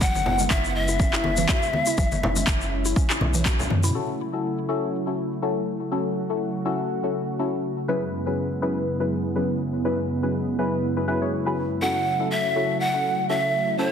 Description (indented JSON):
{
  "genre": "afro house",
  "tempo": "122 BPM",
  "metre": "4/4",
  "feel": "swing 56% on 16ths",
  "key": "F# minor",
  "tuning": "A4 = 440 Hz",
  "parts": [
    { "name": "breathy mellow pan flute", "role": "melody", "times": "0.0-3.5, 11.8-13.9 s", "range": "C#5 to F#5", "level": "-24 LUFS", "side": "equal", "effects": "ping-pong delay" },
    { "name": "warm analog pad", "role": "sustained chords", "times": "0.0-13.9 s", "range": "F#2 to F#4", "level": "-28 LUFS", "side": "right 1 dB", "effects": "lush chorus, sidechain pumping" },
    { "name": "mallet-like synth pluck", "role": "arpeggios", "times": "0.0-3.9 s", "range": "E3 to F#4", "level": "-32 LUFS", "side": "equal", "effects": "chorus, phaser, sidechain pumping, ping-pong delay" },
    { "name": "warm 808-style bass", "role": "bass", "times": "0.0-3.9 s", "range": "F#1 to F#2", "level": "-26 LUFS", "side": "equal", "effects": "tube saturation, sidechain pumping" },
    { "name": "electronic kick drum", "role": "drums", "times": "0.0-3.6 s", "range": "none", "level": "-24 LUFS", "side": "equal", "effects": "overdrive" },
    { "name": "egg shaker", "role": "percussion", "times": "0.0-3.9 s", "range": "none", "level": "-32 LUFS", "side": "left 5 dB", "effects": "none" },
    { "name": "congas", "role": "percussion", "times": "0.2-3.8 s", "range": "none", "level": "-29 LUFS", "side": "left 1 dB", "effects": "none" },
    { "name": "deep house drum kit", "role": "drums", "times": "0.5-3.9 s", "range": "handclaps, toms", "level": "-27 LUFS", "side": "left 1 dB", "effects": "overdrive" },
    { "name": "deep mellow chord stab", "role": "stabs", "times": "3.9-13.9 s", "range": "F#3 to C#5", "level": "-26 LUFS", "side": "left 3 dB", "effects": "chorus, vintage 12-bit sampler grit, sidechain pumping, ping-pong delay" }
  ],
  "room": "moderate digital room reverb, RT60 1.3 s, digital ambience",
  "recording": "dense, heavily limited modern master",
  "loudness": "-22 LUFS",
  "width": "side -8 dB against mid",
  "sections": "0.0-3.9 A section; 3.9-13.9 B section",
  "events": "drum fill 3.7",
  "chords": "0.0 C#m7/F#; 3.9 F#m7; 7.9 C#m7/F#; 11.8 F#m7",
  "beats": "| 0.01 0.51 1.00 1.49 | 1.98 2.47 2.96 3.46 | 3.95 4.44 4.93 5.42 | 5.92 6.41 6.90 7.39 | 7.88 8.37 8.87 9.36 | 9.85 10.34 10.83 11.32 | 11.82 12.31 12.80 13.29 | 13.78"
}